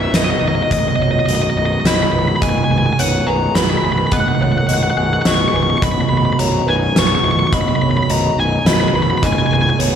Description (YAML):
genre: post-rock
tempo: 106 BPM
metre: 3/4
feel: straight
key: B major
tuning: A4 = 440 Hz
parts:
  - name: fuzz lead guitar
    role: melody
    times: 0.0-9.8 s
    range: D#5 to C#6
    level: -19 LUFS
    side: left 1 dB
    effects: distortion, slapback echo, tape echo
  - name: hand-pumped harmonium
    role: sustained chords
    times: 0.0-10.0 s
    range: D#3 to F#4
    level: -28 LUFS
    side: equal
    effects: none
  - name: electric guitar through a small old amp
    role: arpeggios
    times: 0.0-10.0 s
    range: B1 to G#4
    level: -24 LUFS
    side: left 1 dB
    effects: harmonic tremolo, tape echo
  - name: felt-muted upright piano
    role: arpeggios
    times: 0.0-10.0 s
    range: B4 to D#5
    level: -25 LUFS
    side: right 2 dB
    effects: slapback echo, tape echo
  - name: fuzz fingered electric bass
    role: bass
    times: 0.0-10.0 s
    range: B0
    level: -19 LUFS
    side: equal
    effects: overdrive
  - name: oversized low-tuned drum kit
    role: drums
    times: 0.1-9.9 s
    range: hi-hat, kick drum, snare drum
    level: -18 LUFS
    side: right 2 dB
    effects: none
room: moderate recital hall reverb, RT60 1.4 s, small room ambience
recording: big arena sound, small room reverb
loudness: -13 LUFS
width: side -8 dB against mid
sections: 0.0-10.0 A section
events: none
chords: 0.0 B6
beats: 0.14 | 0.71 1.28 1.85 | 2.41 2.98 3.55 | 4.12 4.69 5.25 | 5.82 6.39 6.96 | 7.53 8.09 8.66 | 9.23 9.80